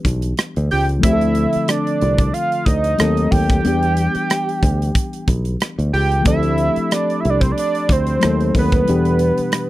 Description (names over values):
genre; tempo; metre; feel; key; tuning
lush 1970s-style soul; 92 BPM; 4/4; swing 54% on 16ths; D dorian; A4 = 440 Hz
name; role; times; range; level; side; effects
reed electric piano; accompaniment; 0.0-9.7 s; B2 to A4; -22 LUFS; left 3 dB; none
modern studio drum kit; drums; 0.0-9.7 s; hi-hat, kick drum, rim click; -19 LUFS; equal; none
fingered electric bass; bass; 0.1-9.4 s; B1 to E2; -19 LUFS; equal; none
fat analog lead; melody; 0.7-9.7 s; B4 to G5; -20 LUFS; right 2 dB; none
vibraphone with soft mallets; texture; 6.3-9.2 s; G4 to B5; -30 LUFS; right 4 dB; stereo widening
room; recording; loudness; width
little or no reverb; dry, close 1970s-style studio recording; -15 LUFS; side -16 dB against mid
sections
0.0-9.7 A section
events
none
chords
0.0 Em7; 1.0 Dm7; 3.0 D#dim7; 3.6 Em7; 6.3 Dm7; 8.2 D#dim7; 8.9 Em7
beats
0.38 | 1.03 1.68 2.34 2.99 | 3.64 4.30 4.95 5.60 | 6.26 6.91 7.56 8.22 | 8.87 9.52